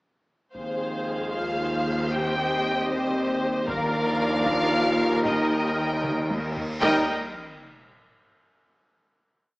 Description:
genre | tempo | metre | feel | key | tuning
cinematic, epic orchestral film score | 77 BPM (dotted quarters) | 6/8 | straight | Eb major | A4 = 440 Hz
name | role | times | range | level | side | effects
dark studio violin section | melody | 0.6-7.1 s | Bb4 to G5 | -29 LUFS | left 1 dB | none
warm symphonic violin section | second line | 0.6-7.1 s | C5 to G5 | -31 LUFS | equal | none
rich symphonic viola section | accompaniment | 0.6-7.1 s | G4 to C5 | -31 LUFS | equal | none
clear trombone section | sustained chords | 0.6-7.0 s | F3 to Eb4 | -32 LUFS | equal | none
mellow French horn section | sustained chords | 0.6-7.0 s | Bb3 to G4 | -30 LUFS | left 1 dB | none
mellow tuba | bass | 0.6-7.0 s | Eb2 | -32 LUFS | right 1 dB | none
warm symphonic cello section | bass | 0.6-7.1 s | Eb2 | -33 LUFS | equal | none
warm symphonic double bass section | bass | 0.6-7.1 s | Eb2 | -35 LUFS | equal | none
taiko ensemble | drums | 0.6-6.9 s | none | -36 LUFS | equal | none
cymbal swell and sub drop | sound effects | 6.2-8.4 s | none | -41 LUFS | equal | none
room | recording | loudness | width
moderate scoring stage reverb, RT60 1.4 s | small speaker sound | -22 LUFS | side -22 dB against mid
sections
0.6-6.8 theme; 6.8-8.4 final chord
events
drum fill 6.0-6.8; cymbal swell 6.2-6.8; impact 6.8-8.4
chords
0.6 Fm/Eb; 2.1 Cm/Eb; 3.7 Bb/Eb; 5.3 Eb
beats
| 0.56 1.34 | 2.13 2.91 | 3.69 4.48 | 5.26 6.04 | 6.82 7.61

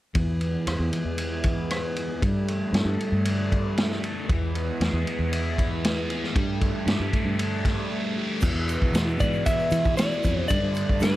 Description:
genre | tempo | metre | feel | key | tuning
psychedelic rock | 116 BPM | 4/4 | straight | unclear | A4 = 440 Hz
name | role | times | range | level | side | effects
thick fuzz guitar | riff | 0.1-11.2 s | E2 to A4 | -29 LUFS | equal | distortion, phaser, low-pass filter
vintage drum kit | drums | 0.1-11.1 s | crash cymbal, kick drum, ride cymbal, rim click, snare drum | -27 LUFS | equal | none
warm brass ensemble | sustained chords | 0.2-11.2 s | G3 to B4 | -35 LUFS | right 3 dB | low-pass filter
fingered electric bass | bass | 0.2-11.2 s | D2 to E3 | -28 LUFS | equal | none
tube shaker | percussion | 8.4-11.2 s | none | -46 LUFS | right 11 dB | none
electric slide guitar | melody | 9.2-11.2 s | B4 to E5 | -26 LUFS | equal | tape echo
room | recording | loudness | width
light reverb, studio reverb | none | -23 LUFS | side -15 dB against mid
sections
0.1-8.4 A section; 8.4-11.2 B section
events
filter sweep 0.1-8.4; break 7.9-8.4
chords
0.1 E; 2.2 Gsus2; 4.3 E; 6.4 Gsus2; 8.4 E; 10.5 Gsus2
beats
| 0.15 0.66 1.18 1.70 | 2.21 2.73 3.25 3.77 | 4.28 4.80 5.32 5.83 | 6.35 6.87 7.39 7.90 | 8.42 8.94 9.46 9.97 | 10.49 11.01

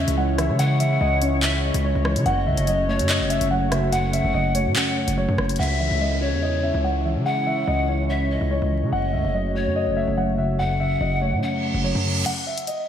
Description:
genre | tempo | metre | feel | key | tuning
hip hop, drill | 144 BPM | 4/4 | half-time | C# minor | A4 = 439 Hz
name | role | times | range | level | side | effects
dark grand piano | melody | 0.0-12.8 s | C#5 to F#5 | -27 LUFS | equal | lush chorus, low-pass filter, tape echo
breathy pan flute | second line | 0.0-11.8 s | C#5 to F#5 | -28 LUFS | left 2 dB | tape echo
muted felt-like synth keys | accompaniment | 0.0-12.3 s | F#2 to C#5 | -26 LUFS | equal | chorus, low-pass filter
warm analog pad | sustained chords | 0.0-12.2 s | G#3 to C#5 | -30 LUFS | equal | chorus, low-pass filter
distorted 808-style bass | bass | 0.0-12.2 s | F#1 to C#3 | -24 LUFS | equal | distortion
drill drum kit | drums | 0.1-5.7, 12.3-12.8 s | crash cymbal, handclaps, hi-hat, rim click | -27 LUFS | left 1 dB | none
downlifter and reverse cymbal | sound effects | 5.6-8.9, 11.6-12.3 s | none | -31 LUFS | right 2 dB | none
room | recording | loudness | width
wet lush hall reverb, RT60 2.3 s | dreamy mix soaked in reverb, vinyl crackle | -19 LUFS | side -9 dB against mid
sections
0.0-5.6 A section; 5.6-12.3 B section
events
filter sweep 5.6-12.3; reverse cymbal 11.6-12.3; break 12.3-12.9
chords
0.0 C#m; 2.3 F#m; 5.6 C#m; 8.9 F#m; 12.3 N.C.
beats
0.17 | 0.59 1.01 1.43 1.84 | 2.26 2.67 3.09 3.51 | 3.92 4.34 4.76 5.17 | 5.59 6.01 6.42 6.84 | 7.26 7.67 8.09 8.51 | 8.93 9.34 9.76 10.18 | 10.59 11.01 11.43 11.84 | 12.26 12.68

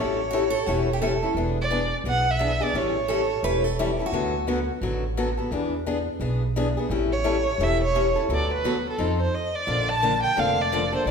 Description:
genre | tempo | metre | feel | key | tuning
acoustic string swing (jazz manouche) | 173 BPM | 4/4 | swing 59% on 8ths | unclear | A4 = 440 Hz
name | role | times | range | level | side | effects
dark violin | melody | 0.0-3.8, 7.1-11.1 s | A4 to A5 | -25 LUFS | right 2 dB | none
picked steel-string acoustic guitar | accompaniment | 0.0-11.1 s | B2 to A4 | -26 LUFS | left 4 dB | none
upright bass | bass | 0.0-11.1 s | E1 to F2 | -28 LUFS | right 1 dB | none
picked steel-string acoustic guitar | second line | 0.3-4.7 s | F#4 to B4 | -29 LUFS | right 4 dB | none
room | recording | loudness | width
wet recital hall reverb, RT60 1.4 s | recorded in a church or concert hall | -22 LUFS | side -6 dB against mid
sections
0.0-9.7 A section; 9.7-11.1 B section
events
stop 9.3-9.7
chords
0.0 A7; 1.4 E7; 2.7 A7; 4.1 D6; 5.5 E7; 6.9 A7; 8.3 D6; 9.0 F7; 9.7 Bbmaj7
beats
0.32 0.67 1.01 | 1.36 1.71 2.05 2.40 | 2.74 3.09 3.44 3.78 | 4.13 4.48 4.82 5.17 | 5.51 5.86 6.21 6.56 | 6.90 7.25 7.60 7.94 | 8.29 8.64 8.98 9.33 | 9.68 10.02 10.37 10.71 | 11.06

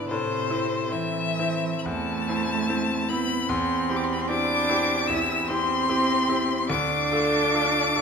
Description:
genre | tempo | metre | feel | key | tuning
classical, slow romantic movement for piano trio | 62-76 BPM | 4/4 | rubato | C major from 3.5 s | A4 = 440 Hz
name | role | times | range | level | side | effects
rich violin | melody | 0.0-8.0 s | C5 to E6 | -26 LUFS | left 5 dB | none
warm cello | second line | 0.0-8.0 s | C3 to E4 | -27 LUFS | right 6 dB | none
bright concert grand piano | accompaniment | 0.0-8.0 s | D2 to A4 | -27 LUFS | left 1 dB | none
room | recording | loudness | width
wet recital hall reverb, RT60 1.7 s | recorded in a church or concert hall | -22 LUFS | side -6 dB against mid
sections
0.0-8.0 A section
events
none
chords
0.1 Am; 3.5 C/E; 6.7 Dm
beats
| 0.10 0.93 1.86 2.69 | 3.49 4.29 5.08 5.88 | 6.69 7.53

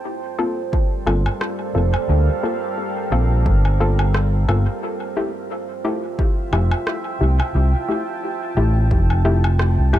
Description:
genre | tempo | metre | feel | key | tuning
ambient dub | 88 BPM | 4/4 | swing 55% on 16ths | G dorian | A4 = 440 Hz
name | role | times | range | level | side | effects
deep dark ambient pad | sustained chords | 0.0-10.0 s | G3 to A5 | -26 LUFS | right 3 dB | chorus, built-in reverb
filtered dub chord stab | stabs | 0.4-10.0 s | A3 to A4 | -25 LUFS | left 3 dB | chorus, dub echo
electronic kick drum | drums | 0.7-9.1 s | none | -19 LUFS | equal | none
overdriven fingered electric bass | bass | 1.1-10.0 s | F1 to D2 | -16 LUFS | equal | none
electronic woodblock and rim click | drums | 1.1-10.0 s | none | -28 LUFS | left 1 dB | dub echo
room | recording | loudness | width
little or no reverb | echo-heavy mix | -17 LUFS | side -12 dB against mid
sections
0.0-10.0 A section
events
none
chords
0.0 Gm11; 4.8 Fmaj7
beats
0.05 0.73 1.41 | 2.10 2.78 3.46 4.14 | 4.82 5.50 6.19 6.87 | 7.55 8.23 8.91 9.60

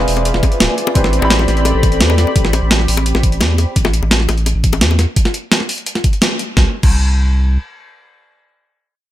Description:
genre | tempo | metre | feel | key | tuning
liquid drum and bass | 171 BPM | 4/4 | straight | unclear | A4 = 440 Hz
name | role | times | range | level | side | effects
dark baby grand piano | accompaniment | 0.0-2.4 s | C4 to B5 | -20 LUFS | equal | digital delay
warm analog pad | sustained chords | 0.0-3.7 s | C4 to B5 | -23 LUFS | right 2 dB | chorus
vibraphone with medium mallets | arpeggios | 0.0-2.4 s | A4 to G#5 | -22 LUFS | left 3 dB | ping-pong delay
saturated sub bass | bass | 0.0-7.6 s | D1 to E2 | -15 LUFS | equal | tube saturation
breakbeat sampler-style drum kit | drums | 0.1-6.9 s | crash cymbal, hi-hat, snare drum | -17 LUFS | equal | overdrive
bongos | percussion | 0.2-5.0 s | none | -23 LUFS | left 7 dB | none
electronic kick drum | drums | 0.4-6.9 s | none | -14 LUFS | equal | overdrive
room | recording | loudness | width
little or no reverb | none | -12 LUFS | side -13 dB against mid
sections
0.0-6.6 A section; 6.6-9.1 B section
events
drop 0.0-6.6; band accent 6.2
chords
0.0 E7b9b13; 1.0 Am11; 6.6 N.C.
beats
0.25 0.60 | 0.95 1.30 1.66 2.01 | 2.36 2.71 3.06 3.41 | 3.76 4.11 4.46 4.81 | 5.17 5.51 5.87 6.22 | 6.57 6.92 7.27

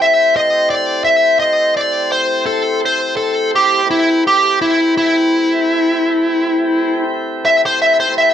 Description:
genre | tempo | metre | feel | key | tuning
blues | 56 BPM (dotted quarters) | 12/8 | straight | A minor | A4 = 438 Hz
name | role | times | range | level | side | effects
smooth overdriven lead guitar | melody | 0.0-8.3 s | E4 to E5 | -12 LUFS | equal | none
tonewheel organ | sustained chords | 0.0-8.3 s | A3 to C5 | -22 LUFS | equal | slow rotary speaker
room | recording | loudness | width
wet small room ambience, RT60 0.5 s | band playing live in one room | -12 LUFS | side -9 dB against mid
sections
0.0-8.3 A section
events
lead electric guitar solo 0.0-8.3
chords
0.0 Am7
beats
0.67 1.73 2.79 | 3.85 4.92 5.98 7.04 | 8.11

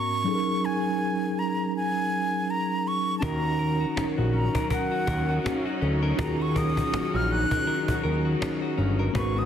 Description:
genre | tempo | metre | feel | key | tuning
contemporary R&B | 81 BPM | 4/4 | swing 58% on 16ths | Eb minor | A4 = 440 Hz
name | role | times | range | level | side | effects
concert flute | melody | 0.0-9.5 s | Gb5 to Gb6 | -29 LUFS | right 1 dB | tape echo
mellow tine electric piano | accompaniment | 0.0-9.5 s | Ab2 to Bb4 | -29 LUFS | right 1 dB | medium stereo tremolo
warm studio string section | sustained chords | 3.2-9.5 s | Db3 to Eb4 | -32 LUFS | right 2 dB | none
direct-recorded clean electric guitar | arpeggios | 3.2-9.5 s | Eb3 to Cb5 | -32 LUFS | left 8 dB | none
fat analog bass | bass | 3.2-9.5 s | G1 to Eb2 | -26 LUFS | equal | none
cajon | drums | 3.2-9.4 s | none | -32 LUFS | equal | none
room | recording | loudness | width
light reverb, small room ambience | dense, heavily limited modern master | -23 LUFS | side -9 dB against mid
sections
0.0-9.5 A section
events
none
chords
0.3 Gb69; 3.2 Ebm7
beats
| 0.26 1.00 1.74 2.48 | 3.23 3.97 4.71 5.45 | 6.19 6.93 7.67 8.41 | 9.15

